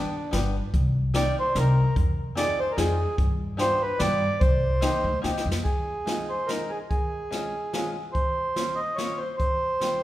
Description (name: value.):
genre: musette waltz.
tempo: 145 BPM.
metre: 3/4.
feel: swing 54% on 8ths.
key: C minor, F minor from 5.7 s.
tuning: A4 = 440 Hz.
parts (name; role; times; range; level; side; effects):
mellow accordion; melody; 0.0-10.0 s; D4 to Eb5; -27 LUFS; right 1 dB; none.
open-back banjo; accompaniment; 0.0-10.0 s; G3 to B4; -33 LUFS; left 2 dB; none.
upright bass; bass; 0.0-5.6 s; G1 to G2; -26 LUFS; equal; none.
jazz brush drum kit; drums; 0.3-9.9 s; hi-hat, kick drum, snare drum; -28 LUFS; equal; none.
room: moderate recital hall reverb, RT60 1.8 s.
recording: heard from further back in the room.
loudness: -23 LUFS.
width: side -14 dB against mid.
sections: 0.0-5.7 A section; 5.7-10.0 B section.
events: drum fill 5.2-5.7.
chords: 0.0 G; 0.7 Cm7; 2.0 Fm7; 3.2 G7; 4.4 Cm7; 5.7 Fm7; 6.9 Dbmaj7; 8.1 Bbmadd9; 9.4 Csus4.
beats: 0.33 | 0.74 1.15 1.56 | 1.97 2.37 2.77 | 3.18 3.59 4.00 | 4.41 4.82 5.24 | 5.65 6.07 6.49 | 6.90 7.32 7.73 | 8.15 8.56 8.98 | 9.40 9.81.